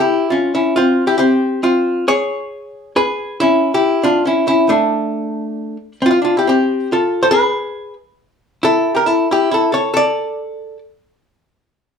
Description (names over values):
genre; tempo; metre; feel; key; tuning
musette; 137 BPM; 3/4; straight; unclear; A4 = 441 Hz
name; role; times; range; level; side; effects
archtop guitar, miked and amplified; solo; 0.0-10.8 s; A3 to D5; -14 LUFS; left 1 dB; none
room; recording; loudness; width
moderate studio reverb, RT60 0.7 s; band playing live in one room; -13 LUFS; side -6 dB against mid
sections
0.0-6.0 A section; 6.0-11.2 B section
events
none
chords
0.0 C#dim; 0.7 Csus4; 2.1 N.C.; 3.4 C#dim; 4.7 N.C.; 6.0 Csus4; 7.3 N.C.; 8.6 A5; 9.9 N.C.